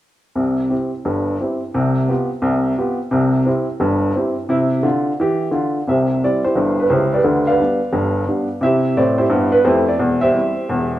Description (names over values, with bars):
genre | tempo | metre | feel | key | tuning
jazz, stride piano | 174 BPM | 4/4 | swing 62% on 8ths | C major | A4 = 439 Hz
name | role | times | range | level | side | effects
warm upright piano | solo | 0.4-11.0 s | E1 to F5 | -15 LUFS | equal | none
room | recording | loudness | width
wet stone room reverb, RT60 1.4 s | band playing live in one room | -15 LUFS | side -14 dB against mid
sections
0.4-5.9 A section; 5.9-11.0 B section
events
none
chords
0.4 C; 1.7 G7/C; 3.1 C; 7.2 G7/D; 8.6 C; 10.0 C/E